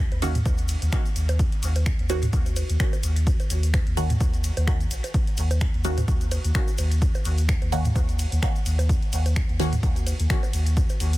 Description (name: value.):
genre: dub techno.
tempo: 128 BPM.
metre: 4/4.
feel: swing 56% on 16ths.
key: unclear.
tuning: A4 = 440 Hz.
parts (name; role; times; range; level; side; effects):
warm sub bass; bass; 0.0-11.2 s; A#1 to D#2; -24 LUFS; equal; sidechain pumping.
deep house drum kit; drums; 0.1-11.2 s; finger snaps, hi-hat, ride cymbal; -34 LUFS; equal; soft clipping on snare.
electronic bongos and toms; percussion; 0.1-11.0 s; none; -32 LUFS; right 1 dB; sidechain pumping on perc, sidechain pumping on toms, dub echo.
filtered dub chord stab; stabs; 0.2-9.8 s; D#3 to F#4; -32 LUFS; right 1 dB; phaser, sidechain pumping, dub echo.
tube shaker; percussion; 0.2-11.2 s; none; -39 LUFS; left 3 dB; none.
electronic kick drum; drums; 0.5-10.9 s; none; -24 LUFS; equal; none.
room: digital ambience.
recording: dense, heavily limited modern master.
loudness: -21 LUFS.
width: side -17 dB against mid.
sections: 0.0-11.2 A section.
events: none.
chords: none.